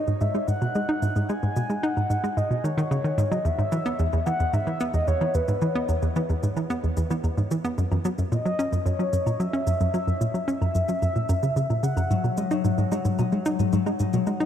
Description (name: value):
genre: ambient, sequencer-driven space music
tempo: 111 BPM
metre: 4/4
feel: straight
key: G# minor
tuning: A4 = 439 Hz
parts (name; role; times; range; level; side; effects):
- mellow horn-like synth lead; melody; 0.0-12.4 s; B4 to G#5; -29 LUFS; left 1 dB; chorus, analog delay
- hollow square pluck; riff; 0.0-14.5 s; E2 to D#4; -24 LUFS; equal; chorus, cassette tape, analog delay
- shaker and woodblock; percussion; 0.1-14.5 s; none; -46 LUFS; left 3 dB; analog delay
- concert harp; arpeggios; 12.1-14.5 s; F#3 to G#3; -26 LUFS; left 8 dB; auto-pan, analog delay
room: moderate huge ambient reverb, RT60 7.6 s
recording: cassette tape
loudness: -22 LUFS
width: side -9 dB against mid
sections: 0.0-14.5 A section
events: fade-in on drum 0.0-14.5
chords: 0.0 G#7(no3); 3.5 E5; 7.8 F#7; 12.1 G#7(no3)